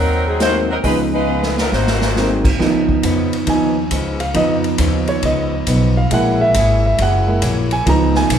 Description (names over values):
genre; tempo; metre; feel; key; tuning
jazz, big band swing; 137 BPM; 4/4; swing 66% on 8ths; Db mixolydian; A4 = 442 Hz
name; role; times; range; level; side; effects
warm saxophone section; melody; 0.0-2.4 s; Gb3 to C5; -19 LUFS; left 1 dB; none
picked acoustic archtop guitar; accompaniment; 0.0-8.4 s; Ab2 to Ab4; -24 LUFS; left 3 dB; none
upright bass; bass; 0.0-8.4 s; Gb1 to F2; -19 LUFS; equal; none
warm baby grand piano; accompaniment; 0.4-8.4 s; F3 to Bb5; -17 LUFS; right 2 dB; none
swinging big-band drum kit; drums; 0.4-8.4 s; crash cymbal, hi-hat, kick drum, ride cymbal, snare drum; -22 LUFS; equal; none
room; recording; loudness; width
moderate scoring stage reverb, RT60 1.9 s; recorded in a church or concert hall; -14 LUFS; side -8 dB against mid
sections
0.0-2.6 A section; 2.6-8.4 B section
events
drum fill 1.3-2.2; grand piano solo 2.6-8.4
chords
0.0 Ab9; 0.8 Db9; 1.7 Ab9; 2.6 Db9; 6.1 Gb9; 7.9 Db9